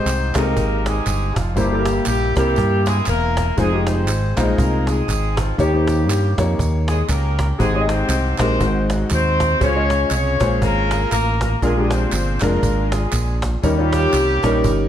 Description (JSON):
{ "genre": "uptempo gospel", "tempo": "119 BPM", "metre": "4/4", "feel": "swing 58% on 8ths", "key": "Ab major", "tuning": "A4 = 440 Hz", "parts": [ { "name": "mellow horn section", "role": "melody", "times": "0.0-14.9 s", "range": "F3 to Db5", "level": "-22 LUFS", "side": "left 1 dB", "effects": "none" }, { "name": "clear concert grand piano", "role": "accompaniment", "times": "0.0-14.9 s", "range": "G2 to Eb5", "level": "-22 LUFS", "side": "left 1 dB", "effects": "none" }, { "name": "fingered electric bass", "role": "bass", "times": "0.1-14.9 s", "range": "E1 to G2", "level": "-20 LUFS", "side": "right 1 dB", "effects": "none" }, { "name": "cajon", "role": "drums", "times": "0.1-14.8 s", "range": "none", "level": "-26 LUFS", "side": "right 1 dB", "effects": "none" }, { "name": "handclaps and tambourine", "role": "percussion", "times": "0.1-14.8 s", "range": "none", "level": "-32 LUFS", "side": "right 6 dB", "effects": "none" } ], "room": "light reverb", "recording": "none", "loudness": "-16 LUFS", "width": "side -10 dB against mid", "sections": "0.0-14.9 A section", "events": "drum fill 14.6", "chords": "0.0 Abmaj7; 1.6 C7/G; 3.6 Fm7; 5.6 Eb7; 7.6 Abmaj7; 8.6 Ab7; 9.6 Dbmaj7; 11.6 Bb7; 13.6 Eb7", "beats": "0.06 0.56 1.06 | 1.57 2.07 2.57 3.08 | 3.58 4.08 4.58 5.08 | 5.59 6.09 6.59 7.09 | 7.60 8.10 8.60 9.11 | 9.61 10.11 10.61 11.12 | 11.62 12.12 12.62 13.13 | 13.63 14.13 14.64" }